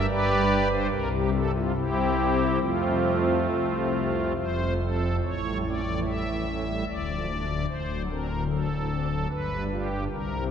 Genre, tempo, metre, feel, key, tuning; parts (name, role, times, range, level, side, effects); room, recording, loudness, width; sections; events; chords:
classical, chorale-style piece for pipe organ; 67-76 BPM; 3/4; rubato; A4 = 440 Hz
pipe organ, strings celeste; solo; 0.0-10.5 s; D1 to E5; -24 LUFS; equal
wet church reverb, RT60 3.6 s; -24 LUFS; side -8 dB against mid
0.0-5.2 A section; 5.2-10.5 B section
0.1 G; 0.9 N.C.; 1.7 C; 2.6 F; 5.2 A7; 6.9 Dm; 7.7 D7; 9.3 G7